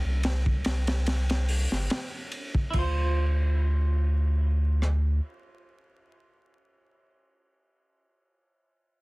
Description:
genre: trip hop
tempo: 72 BPM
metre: 4/4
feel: straight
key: D minor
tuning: A4 = 440 Hz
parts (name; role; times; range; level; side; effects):
- warm sub bass; bass; 0.0-5.2 s; G1 to D2; -24 LUFS; equal; none
- crunchy breakbeat drum kit; drums; 0.2-5.0 s; crash cymbal, hi-hat, kick drum, ride cymbal, rim click, snare drum; -30 LUFS; equal; none
- clean electric guitar; accompaniment; 2.7-7.1 s; E4 to C5; -37 LUFS; right 4 dB; tremolo, tape echo
room: small room ambience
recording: dense, heavily limited modern master, vinyl crackle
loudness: -24 LUFS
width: side -24 dB against mid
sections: 0.0-2.7 A section; 2.7-6.1 B section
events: none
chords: 0.0 N.C.; 2.7 Dm7

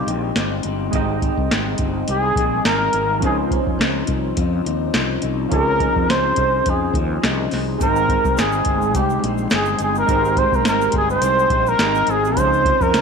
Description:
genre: indie pop, bedroom pop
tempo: 105 BPM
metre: 4/4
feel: swing 55% on 16ths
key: Ab major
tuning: A4 = 440 Hz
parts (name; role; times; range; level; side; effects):
- breathy trumpet; melody; 0.0-13.0 s; G4 to C5; -19 LUFS; right 1 dB; analog chorus, tape echo
- electric guitar through a small old amp; accompaniment; 0.0-13.0 s; Ab2 to Eb4; -25 LUFS; left 11 dB; wide subtle chorus, warbly pitch drift
- warm analog keys; accompaniment; 0.0-13.0 s; F3 to G5; -26 LUFS; right 12 dB; chorus, cassette tape
- fretless electric bass; bass; 0.1-13.0 s; G1 to F2; -25 LUFS; equal; none
- soft vintage rhythm box; drums; 0.1-13.0 s; hi-hat, kick drum, snare drum; -22 LUFS; equal; none
- soft string machine; sustained chords; 8.5-13.0 s; Ab3 to Eb6; -30 LUFS; right 2 dB; ensemble chorus
- tube shaker; percussion; 7.8-13.0 s; none; -42 LUFS; right 16 dB; none
room: moderate echo chamber reverb, RT60 1.4 s, digital ambience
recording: 1960s-style stereo with parts hard left and right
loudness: -16 LUFS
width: side -5 dB against mid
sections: 0.0-13.0 A section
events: trumpet solo 0.0-13.0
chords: 0.0 Abmaj9; 3.2 Dbmaj9; 7.8 Abmaj7; 12.4 Dbmaj9

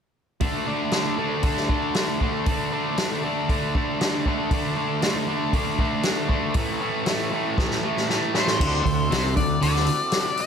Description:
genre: blues rock power trio and southern rock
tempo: 117 BPM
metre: 4/4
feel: straight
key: D mixolydian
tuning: A4 = 440 Hz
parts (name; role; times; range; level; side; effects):
- sludgy distorted guitar; riff; 0.4-9.9 s; A2 to D4; -24 LUFS; equal; overdrive
- vintage drum kit; drums; 0.4-10.5 s; crash cymbal, hi-hat, kick drum, snare drum; -26 LUFS; equal; none
- octave-fuzz lead guitar; melody; 8.4-10.5 s; C5 to F#5; -25 LUFS; left 4 dB; distortion
- overdriven tonewheel organ; sustained chords; 8.6-10.5 s; C4 to A4; -33 LUFS; right 4 dB; slow rotary speaker, chorus vibrato
- fuzz fingered electric bass; bass; 8.6-9.9 s; C2 to D2; -26 LUFS; equal; overdrive
room: light reverb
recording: none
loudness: -21 LUFS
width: side -7 dB against mid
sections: 0.4-8.6 A section; 8.6-10.5 B section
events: drum fill 7.6-8.6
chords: 0.4 D5; 6.6 A5; 8.6 D7

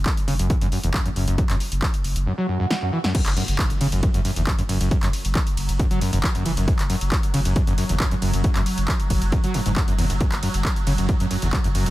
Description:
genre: driving peak-time techno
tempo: 136 BPM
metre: 4/4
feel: straight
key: unclear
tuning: A4 = 440 Hz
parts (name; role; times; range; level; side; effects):
- saturated sub bass; bass; 0.0-11.9 s; F#1; -25 LUFS; equal; sidechain pumping, low-pass filter
- electronic kick drum; drums; 0.1-11.6 s; none; -22 LUFS; equal; overdrive
- techno drum kit; drums; 0.1-11.9 s; crash cymbal, handclaps, hi-hat, ride cymbal, snare drum; -28 LUFS; equal; overdrive, sidechain pumping on hats, sidechain pumping on cymbals
- overdriven acid bass; riff; 0.3-11.9 s; E2 to F#3; -25 LUFS; equal; lush chorus, sidechain pumping, dub echo
- swell and impact; sound effects; 2.4-4.9 s; none; -33 LUFS; right 2 dB; none
- swarming drone; drone; 5.2-11.9 s; F#3; -31 LUFS; right 1 dB; built-in reverb, sidechain pumping
room: little or no reverb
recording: none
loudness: -19 LUFS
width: side -16 dB against mid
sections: 0.0-3.1 A section; 3.1-11.9 B section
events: swell 2.4-3.1; drum fill 2.7-3.1; band accent 3.0; drop 3.1-11.9; impact 3.1-4.9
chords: 0.0 F#5

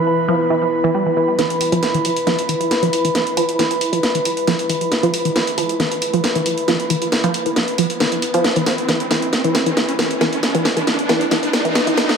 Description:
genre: driving peak-time techno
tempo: 136 BPM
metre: 4/4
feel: straight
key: unclear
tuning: A4 = 440 Hz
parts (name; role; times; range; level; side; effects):
- deep dark ambient pad; drone; 0.0-1.4 s; E3 to B3; -28 LUFS; right 1 dB; chorus, built-in reverb
- airy breathy pad; texture; 0.0-12.2 s; E4 to B5; -21 LUFS; equal; chorus
- tight sequenced synth; riff; 0.3-11.9 s; E3 to G3; -21 LUFS; right 1 dB; chorus, tape echo
- techno drum kit; drums; 1.4-12.2 s; hi-hat, snare drum; -20 LUFS; equal; low-pass filter on snare, low-pass filter on hats, low-pass filter on room
- riser; sound effects; 3.8-12.2 s; none; -25 LUFS; right 1 dB; none
room: wet plate reverb, RT60 1.5 s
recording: dreamy mix soaked in reverb, high-pass filter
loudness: -15 LUFS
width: side -6 dB against mid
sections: 0.0-1.4 A section; 1.4-12.2 B section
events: filter sweep on synth arpeggio sound 0.0-1.4; build-up 1.4-12.2; drum fill 1.4-12.2; riser 3.8-12.2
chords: 0.0 E5

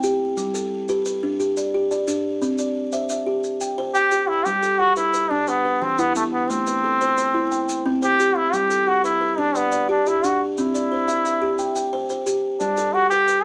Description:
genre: southern african traditional, mbira-style interlocking cycle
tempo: 118 BPM (dotted quarters)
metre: 12/8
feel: straight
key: G major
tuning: A4 = 440 Hz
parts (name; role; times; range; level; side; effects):
- buzzing kalimba; arpeggios; 0.0-13.4 s; E3 to G5; -25 LUFS; equal; none
- maracas; percussion; 0.0-13.4 s; none; -38 LUFS; equal; none
- trombone with straight mute; melody; 3.9-13.4 s; A3 to G4; -22 LUFS; equal; none
room: moderate small room reverb, RT60 0.5 s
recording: vinyl crackle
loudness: -21 LUFS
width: mono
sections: 0.0-4.5 A section; 4.5-13.4 B section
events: none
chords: 0.4 G; 2.4 C; 4.5 G; 5.5 E5; 6.5 Am; 7.5 C5; 8.5 G; 10.6 C; 12.6 G

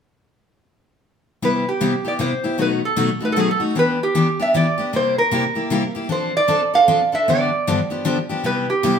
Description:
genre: jazz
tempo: 154 BPM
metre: 3/4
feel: swing 62% on 8ths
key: C major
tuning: A4 = 439 Hz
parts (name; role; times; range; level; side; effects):
- metal-body resonator slide guitar; melody; 1.4-9.0 s; G4 to F5; -19 LUFS; right 2 dB; none
- picked steel-string acoustic guitar; accompaniment; 1.4-9.0 s; G2 to A4; -20 LUFS; left 3 dB; none
room: wet studio reverb, RT60 0.7 s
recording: band playing live in one room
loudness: -17 LUFS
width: side -7 dB against mid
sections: 1.4-9.0 A section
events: none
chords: 1.4 Cmaj7; 2.6 B7; 3.8 Em7; 4.9 C7; 6.1 F6; 7.3 G7; 8.4 Cmaj7

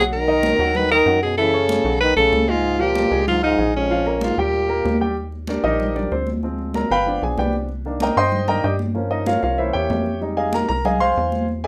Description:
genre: Afro-Cuban jazz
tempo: 190 BPM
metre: 4/4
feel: straight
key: Eb major from 5.2 s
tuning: A4 = 440 Hz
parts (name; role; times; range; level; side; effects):
- breathy alto saxophone; melody; 0.0-5.0 s; Db4 to B4; -21 LUFS; equal; none
- breathy trombone; second line; 0.0-5.0 s; F2 to D#3; -26 LUFS; equal; none
- warm grand piano; accompaniment; 0.0-11.7 s; D#3 to F6; -24 LUFS; equal; none
- tight sequencer bass; bass; 0.0-11.7 s; G1 to G2; -28 LUFS; equal; none
- congas; percussion; 0.1-11.7 s; none; -30 LUFS; equal; none
room: moderate studio ambience, RT60 0.5 s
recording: none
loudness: -20 LUFS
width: mono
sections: 0.0-5.2 A section; 5.2-11.7 B section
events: grand piano solo 5.2-11.7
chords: 0.1 Bmaj7; 1.4 Gbm7; 2.0 Bsus2; 2.6 Db6; 3.9 Bbm; 4.5 Eb; 5.2 Ebmaj7; 6.4 Dm7b5; 7.1 G7; 7.7 Cm9; 9.0 Gm7b5; 9.6 C7b9; 10.2 Fm7

